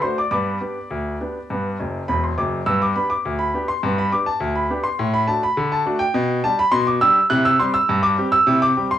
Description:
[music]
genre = ragtime piano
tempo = 103 BPM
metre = 2/4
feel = straight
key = G major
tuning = A4 = 439 Hz
[part]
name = clear grand piano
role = solo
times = 0.0-9.0 s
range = E1 to F#6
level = -17 LUFS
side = equal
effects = cassette tape
[sound]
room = light reverb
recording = home recording on cassette, studio ambience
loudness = -17 LUFS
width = side -11 dB against mid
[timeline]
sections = 0.0-2.7 A section; 2.7-9.0 A section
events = grand piano fill 1.8-2.7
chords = 0.3 G; 5.0 D/A; 6.2 G/B; 7.3 C

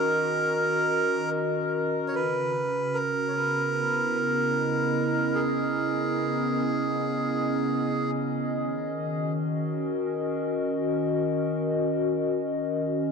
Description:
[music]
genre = ambient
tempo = 75 BPM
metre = 4/4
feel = straight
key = C# dorian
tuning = A4 = 440 Hz
[part]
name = melodica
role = melody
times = 0.0-8.1 s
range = G#4 to C#5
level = -28 LUFS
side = right 1 dB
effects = dub echo
[part]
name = warbly tape-like pad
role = sustained chords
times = 0.0-13.1 s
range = C#3 to D#5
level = -26 LUFS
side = equal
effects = chorus, built-in reverb
[sound]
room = wet spring reverb, RT60 1.7 s, small room ambience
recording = echo-heavy mix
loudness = -24 LUFS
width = side -5 dB against mid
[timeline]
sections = 0.0-2.1 A section; 2.1-13.1 B section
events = none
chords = 0.0 D#m7; 2.1 C#m7; 8.5 D#m7

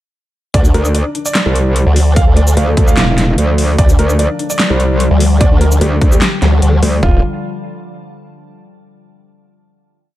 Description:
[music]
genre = heavy wobble dubstep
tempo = 148 BPM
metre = 4/4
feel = half-time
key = D minor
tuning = A4 = 441 Hz
[part]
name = dark grand piano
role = melody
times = 0.5-7.2 s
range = D4 to F5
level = -21 LUFS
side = right 1 dB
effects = tape echo
[part]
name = evolving wavetable pad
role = sustained chords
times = 1.2-7.2 s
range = D3 to A3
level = -22 LUFS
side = left 2 dB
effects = chorus, built-in reverb, sidechain pumping
[part]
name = formant-sweep wobble bass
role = bass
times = 0.5-7.2 s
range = D1 to D2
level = -10 LUFS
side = equal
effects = chorus, overdrive
[part]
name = dubstep drum kit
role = drums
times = 0.5-7.1 s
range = kick drum, toms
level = -11 LUFS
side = equal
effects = none
[part]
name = dubstep drum kit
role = drums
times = 0.5-6.9 s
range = handclaps, hi-hat, shaker, snare drum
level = -18 LUFS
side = equal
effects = none
[part]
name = metallic wobble bass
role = bass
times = 0.7-7.0 s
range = E1 to D2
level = -12 LUFS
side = equal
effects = distortion, chorus, overdrive
[sound]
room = little or no reverb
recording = dark, warm production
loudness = -10 LUFS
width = side -15 dB against mid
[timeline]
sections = 0.5-7.0 drop; 7.0-8.7 final chord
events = drop 0.5-7.0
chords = 0.5 Dm

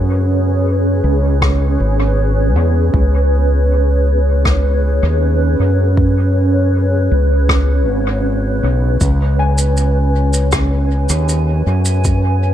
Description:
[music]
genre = ambient dub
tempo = 79 BPM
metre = 4/4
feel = straight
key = unclear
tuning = A4 = 440 Hz
[part]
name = granular cloud pad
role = sustained chords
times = 0.0-12.5 s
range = C#4 to G#5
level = -19 LUFS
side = right 1 dB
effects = built-in reverb
[part]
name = growling fingered electric bass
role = bass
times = 0.0-12.5 s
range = G#1 to F#2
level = -14 LUFS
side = equal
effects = overdrive
[part]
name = electronic kick drum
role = drums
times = 1.4-12.2 s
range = none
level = -18 LUFS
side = equal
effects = overdrive
[part]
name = rim click and shaker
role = drums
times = 1.4-12.2 s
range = none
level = -22 LUFS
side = left 1 dB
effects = dub echo
[part]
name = felt-muted upright piano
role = arpeggios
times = 9.4-12.5 s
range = G#5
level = -27 LUFS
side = left 5 dB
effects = dub echo
[sound]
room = light reverb, small room ambience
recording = echo-heavy mix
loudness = -12 LUFS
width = side -11 dB against mid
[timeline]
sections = 0.0-12.5 A section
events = none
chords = 0.0 C#7(no3)

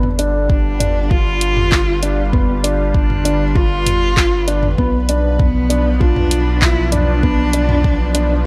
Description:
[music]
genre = piano and strings electronica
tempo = 98 BPM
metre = 4/4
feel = straight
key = unclear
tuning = A4 = 440 Hz
[part]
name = lush unison pad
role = sustained chords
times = 0.0-8.5 s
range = B2 to B4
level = -27 LUFS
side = equal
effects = chorus, phaser, sidechain pumping
[part]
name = felt-muted upright piano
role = riff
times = 0.0-8.3 s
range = B3 to F4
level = -23 LUFS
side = equal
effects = delay
[part]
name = round analog bass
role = bass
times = 0.0-8.5 s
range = G1 to B1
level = -20 LUFS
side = equal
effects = sidechain pumping
[part]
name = deep house drum kit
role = drums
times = 0.0-8.3 s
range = handclaps, hi-hat, toms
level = -23 LUFS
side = equal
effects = none
[part]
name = dark cello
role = melody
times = 0.5-8.5 s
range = B3 to F4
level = -24 LUFS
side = equal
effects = delay
[part]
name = electronic kick drum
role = drums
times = 0.5-8.0 s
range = none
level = -19 LUFS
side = equal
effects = none
[sound]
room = light reverb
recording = none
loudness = -16 LUFS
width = mono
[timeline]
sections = 0.0-8.5 A section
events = none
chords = 0.0 G7; 4.8 Bdim

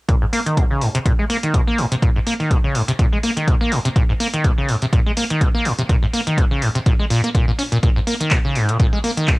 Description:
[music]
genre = acid house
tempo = 124 BPM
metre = 4/4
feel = swing 55% on 16ths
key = Bb minor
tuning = A4 = 440 Hz
[part]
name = acid bass, saw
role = riff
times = 0.1-9.4 s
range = Ab2 to Db4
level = -19 LUFS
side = equal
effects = overdrive, lush chorus, sidechain pumping, cassette tape, tape echo
[part]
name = booming analog drum machine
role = drums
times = 0.1-9.4 s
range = handclaps, hi-hat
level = -26 LUFS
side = equal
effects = cassette tape
[part]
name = electronic kick drum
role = drums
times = 0.1-9.4 s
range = none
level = -17 LUFS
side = equal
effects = cassette tape
[sound]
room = light reverb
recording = home recording on cassette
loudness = -16 LUFS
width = side -22 dB against mid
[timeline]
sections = 0.1-9.4 A section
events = none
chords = none

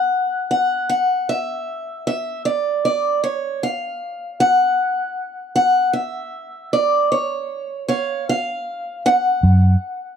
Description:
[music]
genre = acoustic folk-pop ballad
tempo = 51 BPM (dotted quarters)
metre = 6/8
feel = straight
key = unclear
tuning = A4 = 440 Hz
[part]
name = picked acoustic archtop guitar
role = melody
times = 0.0-10.2 s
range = C#5 to F#5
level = -18 LUFS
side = equal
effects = none
[part]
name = vintage muted fingered electric bass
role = bass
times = 9.4-9.7 s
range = F#2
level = -11 LUFS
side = equal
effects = none
[sound]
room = small room ambience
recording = dry, close 1970s-style studio recording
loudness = -17 LUFS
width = side -8 dB against mid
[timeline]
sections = 0.1-9.4 A section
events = none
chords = none

